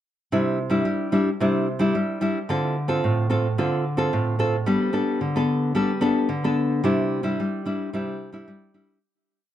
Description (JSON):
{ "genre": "samba", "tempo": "110 BPM", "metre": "4/4", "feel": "straight", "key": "C major", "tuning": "A4 = 440 Hz", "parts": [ { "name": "nylon-string guitar", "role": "solo", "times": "0.3-9.0 s", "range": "A2 to A4", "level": "-21 LUFS", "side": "equal", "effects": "tape echo" } ], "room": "moderate studio ambience, RT60 0.5 s", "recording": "dark, warm production", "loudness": "-21 LUFS", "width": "side -11 dB against mid", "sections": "0.3-9.0 A section", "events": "fade-out 6.8-9.0", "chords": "0.3 Cadd9; 2.5 Dm7; 4.7 Gadd9; 6.8 Cadd9" }